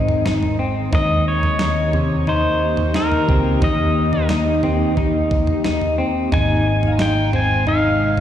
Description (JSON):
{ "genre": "dream pop", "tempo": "89 BPM", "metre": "4/4", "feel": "straight", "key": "unclear", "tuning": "A4 = 440 Hz", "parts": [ { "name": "ethereal airy pad", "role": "sustained chords", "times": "0.0-8.2 s", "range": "C3 to G4", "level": "-24 LUFS", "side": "left 1 dB", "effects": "ensemble chorus, built-in reverb, shimmer reverb" }, { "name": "semi-hollow electric guitar", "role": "arpeggios", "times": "0.0-8.2 s", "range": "C3 to Eb4", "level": "-21 LUFS", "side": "left 2 dB", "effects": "lush chorus, ping-pong delay, shimmer reverb" }, { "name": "picked electric bass", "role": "bass", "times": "0.0-8.2 s", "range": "Ab1 to Eb2", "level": "-21 LUFS", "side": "equal", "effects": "none" }, { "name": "crisp 8-bit digital drum machine", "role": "drums", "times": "0.1-8.2 s", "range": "kick drum, snare drum, toms", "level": "-22 LUFS", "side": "right 2 dB", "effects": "none" }, { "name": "pedal steel guitar", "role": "melody", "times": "0.9-8.2 s", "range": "Bb4 to Ab5", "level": "-23 LUFS", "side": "equal", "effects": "ping-pong delay, shimmer reverb" }, { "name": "shimmering bell with halo", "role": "texture", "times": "6.9-8.2 s", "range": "F5 to C6", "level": "-34 LUFS", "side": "left 1 dB", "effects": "ensemble chorus, ping-pong delay, shimmer reverb" } ], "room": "moderate huge ambient reverb, RT60 6.8 s", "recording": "played on a big sound system in a bare room, stone room reverb", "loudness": "-16 LUFS", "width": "side -10 dB against mid", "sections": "0.0-8.2 A section", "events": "none", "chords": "0.0 Ab; 0.9 Eb; 6.3 Ab" }